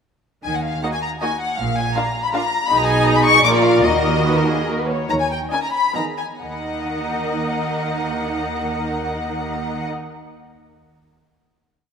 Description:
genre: quick classical-period movement for string orchestra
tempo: 125-163 BPM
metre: 3/4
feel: rubato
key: Eb minor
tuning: A4 = 440 Hz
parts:
  - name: warm studio violin section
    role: melody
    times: 0.4-9.9 s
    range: D5 to D6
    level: -21 LUFS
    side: left 3 dB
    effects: none
  - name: warm studio cello section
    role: bass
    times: 0.4-9.9 s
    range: Bb2 to Eb3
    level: -27 LUFS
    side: right 2 dB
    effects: none
  - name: warm studio double bass section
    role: bass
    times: 0.4-9.9 s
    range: Bb1 to Eb2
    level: -27 LUFS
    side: right 3 dB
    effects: none
  - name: warm studio violin section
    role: second line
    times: 0.8-9.9 s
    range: F4 to F5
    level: -24 LUFS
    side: left 2 dB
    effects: none
  - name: warm studio viola section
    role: accompaniment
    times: 0.8-9.9 s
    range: Bb3 to Gb4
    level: -24 LUFS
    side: right 3 dB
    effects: none
room: wet scoring stage reverb, RT60 2.1 s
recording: minimal, uncompressed stereo recording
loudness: -17 LUFS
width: side -6 dB against mid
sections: 0.5-5.1 A section; 5.1-6.4 coda; 6.4-9.1 final chord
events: slowing down 3.3-6.4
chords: 0.5 Ebm; 1.6 Bb; 2.7 Abm/Cb; 3.5 Bb; 3.9 Ebm; 5.1 Eb5; 5.7 Abm; 6.4 Ebm

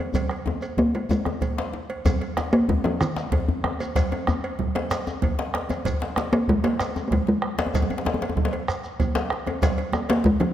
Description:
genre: west african traditional, West African drum ensemble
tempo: 127 BPM (dotted quarters)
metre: 12/8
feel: straight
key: unclear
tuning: A4 = 440 Hz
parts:
  - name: talking drum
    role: melody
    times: 0.0-10.5 s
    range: Eb3 to Bb3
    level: -22 LUFS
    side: equal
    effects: none
  - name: bombo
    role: percussion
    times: 0.1-10.4 s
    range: none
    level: -28 LUFS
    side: right 2 dB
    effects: none
  - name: congas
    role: percussion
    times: 0.1-10.5 s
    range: none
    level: -33 LUFS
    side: right 7 dB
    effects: none
  - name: djembe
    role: percussion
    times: 0.1-10.5 s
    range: none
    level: -32 LUFS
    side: left 4 dB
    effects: none
  - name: djembe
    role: percussion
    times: 0.1-10.5 s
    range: none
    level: -28 LUFS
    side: left 4 dB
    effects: none
  - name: shekere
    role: percussion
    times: 0.1-10.0 s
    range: none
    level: -35 LUFS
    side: right 1 dB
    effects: none
  - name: cowbell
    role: percussion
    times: 0.2-10.5 s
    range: none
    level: -34 LUFS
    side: right 2 dB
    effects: none
room: moderate concert hall reverb, RT60 2.0 s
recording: none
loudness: -22 LUFS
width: side -11 dB against mid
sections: 0.0-2.1 A section; 2.1-10.5 B section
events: drum fill 0.1-2.1, 9.2-9.6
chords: none

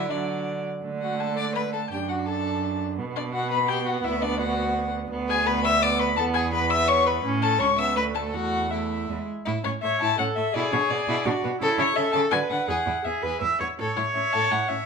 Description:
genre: quick classical-period movement for string quartet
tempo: 168 BPM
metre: 3/4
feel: straight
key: D major, A major from 5.1 s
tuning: A4 = 440 Hz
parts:
  - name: dark violin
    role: melody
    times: 0.0-14.9 s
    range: C#5 to E6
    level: -26 LUFS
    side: left 6 dB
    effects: none
  - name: warm violin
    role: second line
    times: 0.0-14.8 s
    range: A3 to E5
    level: -30 LUFS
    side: left 2 dB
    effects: none
  - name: warm viola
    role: accompaniment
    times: 0.0-14.9 s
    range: F#3 to E5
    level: -28 LUFS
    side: right 3 dB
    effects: none
  - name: rich cello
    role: bass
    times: 0.0-14.8 s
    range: C#2 to D3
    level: -30 LUFS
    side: right 5 dB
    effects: none
room: moderate large studio reverb, RT60 1.2 s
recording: minimal, uncompressed stereo recording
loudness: -22 LUFS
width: side -5 dB against mid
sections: 0.8-9.5 A section; 9.5-14.9 B section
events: none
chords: 0.0 D; 0.8 D5; 1.9 D/F#; 3.0 B5; 4.0 Bm/D; 6.2 E5; 7.2 A; 8.0 D5; 8.3 A5/E; 9.1 E; 9.5 A; 10.5 E7/B; 11.6 A/C#; 12.3 Bm; 12.7 E; 13.8 A

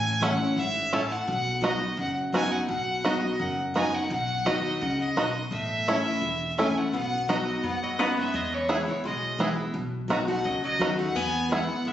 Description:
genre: bluegrass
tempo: 170 BPM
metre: 4/4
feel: straight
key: B mixolydian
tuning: A4 = 440 Hz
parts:
  - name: clear fiddle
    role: melody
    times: 0.0-11.9 s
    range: C#5 to A5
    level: -29 LUFS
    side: equal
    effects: none
  - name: picked steel-string acoustic guitar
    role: accompaniment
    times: 0.0-11.9 s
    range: E2 to F#4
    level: -30 LUFS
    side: left 1 dB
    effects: none
  - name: upright bass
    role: bass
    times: 0.0-11.9 s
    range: E1 to F#2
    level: -36 LUFS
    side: equal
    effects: none
  - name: bluegrass banjo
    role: arpeggios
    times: 0.2-11.6 s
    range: B3 to A4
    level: -28 LUFS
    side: right 2 dB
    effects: none
  - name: lap resonator guitar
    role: second line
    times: 6.6-11.9 s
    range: E3 to C#4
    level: -31 LUFS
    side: left 2 dB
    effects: none
room: moderate studio reverb, RT60 0.7 s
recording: recorded on a phone in the room, studio reverb, compression, nothing above 7.9 kHz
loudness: -24 LUFS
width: side -11 dB against mid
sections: 0.0-11.9 A section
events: none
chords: 0.0 A; 1.3 B; 5.5 A; 6.9 B; 8.3 E; 9.8 B; 11.2 E

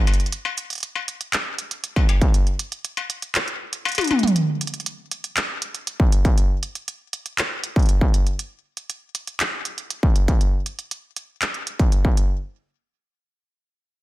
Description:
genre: IDM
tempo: 119 BPM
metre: 4/4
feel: straight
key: none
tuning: none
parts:
  - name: industrial drum kit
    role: drums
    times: 0.1-12.3 s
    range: cabasa, handclaps, hi-hat, struck metal, toms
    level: -23 LUFS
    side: equal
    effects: studio reverb, ping-pong delay
  - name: electronic kick drum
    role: drums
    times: 2.0-2.3, 6.0-12.1 s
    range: none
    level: -17 LUFS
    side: equal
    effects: distortion, studio reverb
room: little or no reverb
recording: dense, heavily limited modern master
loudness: -20 LUFS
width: side -16 dB against mid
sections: 0.0-4.4 A section; 4.4-12.4 B section; 12.4-14.0 C section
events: kick drops out 2.3-4.4; drum fill 4.0-4.4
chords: none

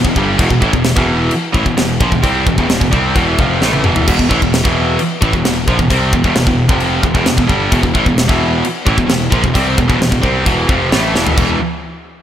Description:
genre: heavy metal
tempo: 131 BPM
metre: 4/4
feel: straight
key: unclear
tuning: A4 = 436 Hz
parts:
  - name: high-gain distorted guitar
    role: riff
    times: 0.0-11.6 s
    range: E2 to C4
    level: -14 LUFS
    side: equal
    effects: distortion, slapback echo
  - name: modern bright picked electric bass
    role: bass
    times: 0.0-11.6 s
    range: E1 to C2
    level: -19 LUFS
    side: equal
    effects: none
  - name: tight metal drum kit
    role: drums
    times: 0.0-11.5 s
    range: china cymbal, crash cymbal, kick drum, snare drum, toms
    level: -16 LUFS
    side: equal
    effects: none
room: light reverb, small room ambience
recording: none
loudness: -11 LUFS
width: side -10 dB against mid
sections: 0.0-11.4 A section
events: drum fill 3.6-4.1, 11.2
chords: 0.0 Em; 11.4 E5

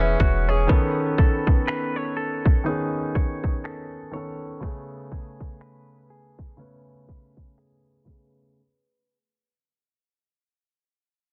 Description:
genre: contemporary R&B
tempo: 61 BPM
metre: 4/4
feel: swing 58% on 16ths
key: unclear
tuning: A4 = 440 Hz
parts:
  - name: warm concert grand piano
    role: accompaniment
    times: 0.0-8.6 s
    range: C#3 to E5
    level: -30 LUFS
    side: equal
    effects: none
  - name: direct-recorded clean electric guitar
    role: arpeggios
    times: 0.0-9.2 s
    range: E3 to C#5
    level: -34 LUFS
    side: equal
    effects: delay
  - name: clean 808-style bass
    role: bass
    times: 0.0-0.7 s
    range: E1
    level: -25 LUFS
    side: equal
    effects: none
  - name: trap drum kit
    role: drums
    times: 0.2-8.3 s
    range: finger snaps, hi-hat, kick drum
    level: -23 LUFS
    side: equal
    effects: vintage 12-bit sampler grit, soft clipping on snare
room: little or no reverb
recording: dense, heavily limited modern master, low-pass filter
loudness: -23 LUFS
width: mono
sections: 0.0-8.6 A section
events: fade-out 0.0-8.6; filter sweep 0.0-8.6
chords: 0.0 E6; 0.7 B9; 4.6 Amaj9

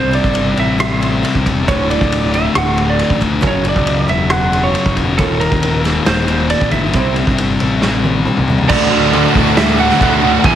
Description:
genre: quiet-loud alternative rock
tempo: 136 BPM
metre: 4/4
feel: straight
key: unclear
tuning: A4 = 441 Hz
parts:
  - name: lightly driven lead guitar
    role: melody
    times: 0.0-10.6 s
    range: A4 to G#5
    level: -19 LUFS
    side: right 4 dB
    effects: slapback echo
  - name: picked old ladder-braced acoustic guitar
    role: arpeggios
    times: 0.0-8.7 s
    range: D2 to C4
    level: -26 LUFS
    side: right 4 dB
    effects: none
  - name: thick fuzz guitar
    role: riff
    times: 0.0-10.6 s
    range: D2 to F#4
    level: -16 LUFS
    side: left 5 dB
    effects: distortion
  - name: fuzz picked electric bass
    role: bass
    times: 0.0-10.6 s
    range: D1 to E2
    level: -20 LUFS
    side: right 1 dB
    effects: overdrive
  - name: raw garage drum kit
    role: drums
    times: 0.1-10.5 s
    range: crash cymbal, kick drum, ride cymbal, rim click, snare drum, toms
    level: -17 LUFS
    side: right 1 dB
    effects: none
  - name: warm symphonic string section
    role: sustained chords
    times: 8.7-10.6 s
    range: A4 to E6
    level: -28 LUFS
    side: equal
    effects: none
  - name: overdriven semi-hollow guitar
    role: riff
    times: 8.7-10.6 s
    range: D2 to F#4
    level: -17 LUFS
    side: right 13 dB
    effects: none
  - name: tight distorted guitar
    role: riff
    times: 8.7-10.6 s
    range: D2 to E3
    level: -22 LUFS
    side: right 3 dB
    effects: none
room: light reverb, small room ambience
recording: heavily compressed radio sound, multiband compression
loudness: -12 LUFS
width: side -10 dB against mid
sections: 0.0-8.7 A section; 8.7-10.6 B section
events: drum fill 7.8-8.7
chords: 0.0 C; 1.7 D5; 3.4 F#5; 5.2 Eb5; 6.9 C; 8.7 D

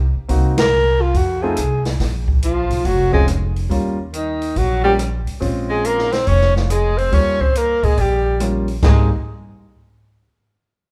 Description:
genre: jazz, small-group swing and bop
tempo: 141 BPM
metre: 4/4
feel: swing 66% on 8ths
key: Ab major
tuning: A4 = 442 Hz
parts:
  - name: upright bass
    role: bass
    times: 0.0-9.1 s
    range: F1 to Bb2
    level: -22 LUFS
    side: equal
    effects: none
  - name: clear concert grand piano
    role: accompaniment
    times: 0.3-9.1 s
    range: G3 to Gb4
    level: -26 LUFS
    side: equal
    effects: none
  - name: open jazz drum kit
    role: drums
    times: 0.3-9.0 s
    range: crash cymbal, hi-hat, kick drum, ride cymbal, rim click, snare drum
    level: -23 LUFS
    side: equal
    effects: none
  - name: breathy alto saxophone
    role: melody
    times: 0.6-9.1 s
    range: Eb4 to Db5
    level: -21 LUFS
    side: equal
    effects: none
  - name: edgy tenor saxophone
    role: second line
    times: 2.4-9.1 s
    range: Eb3 to Db4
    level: -28 LUFS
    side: equal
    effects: none
room: moderate large studio reverb, RT60 1.2 s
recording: band playing live in one room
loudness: -17 LUFS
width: mono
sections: 0.0-2.0 A section; 2.0-8.8 B section; 8.8-10.5 C section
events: band accent 0.5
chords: 0.3 Cm7b5; 1.1 F7; 2.0 Bb5; 3.7 Eb7; 5.4 Bbm7; 7.1 Eb7; 8.8 Abmaj9

